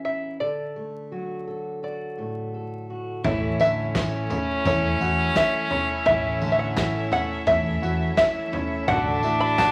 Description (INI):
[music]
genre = indie folk with a building arrangement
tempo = 85 BPM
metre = 4/4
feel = straight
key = A major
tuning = A4 = 439 Hz
[part]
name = open-back banjo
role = melody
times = 0.0-9.7 s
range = C#5 to B5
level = -26 LUFS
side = equal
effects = none
[part]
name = fingerpicked steel-string acoustic guitar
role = accompaniment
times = 0.0-6.1 s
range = E2 to A4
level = -36 LUFS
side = equal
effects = none
[part]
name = stopped French horn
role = second line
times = 3.2-9.7 s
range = C#4 to D4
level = -29 LUFS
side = equal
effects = none
[part]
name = picked steel-string acoustic guitar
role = accompaniment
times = 3.2-9.7 s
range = A2 to F#4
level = -34 LUFS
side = equal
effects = none
[part]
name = warm chamber string section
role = sustained chords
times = 3.2-9.7 s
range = E4 to E5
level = -37 LUFS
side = equal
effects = none
[part]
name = warm upright piano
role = arpeggios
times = 3.2-9.7 s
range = D3 to F#4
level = -33 LUFS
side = equal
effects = none
[part]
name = hollow-body short-scale fingered electric bass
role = bass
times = 3.2-9.7 s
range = A1 to E2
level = -32 LUFS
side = equal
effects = none
[part]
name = natural country drum kit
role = drums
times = 3.2-9.7 s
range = kick drum, snare drum, toms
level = -33 LUFS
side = equal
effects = none
[part]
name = tambourine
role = percussion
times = 3.2-9.7 s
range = none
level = -49 LUFS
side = equal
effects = none
[part]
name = group handclap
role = percussion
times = 4.0-9.7 s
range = none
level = -38 LUFS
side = equal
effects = none
[sound]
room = moderate large studio reverb, RT60 1.4 s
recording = vinyl crackle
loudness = -24 LUFS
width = mono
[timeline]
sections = 0.0-3.2 A section; 3.2-9.7 B section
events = none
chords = 0.4 D; 3.2 A; 8.9 D/A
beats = | 0.41 1.12 1.83 2.54 | 3.25 3.96 4.66 5.36 | 6.07 6.77 7.47 8.18 | 8.88 9.58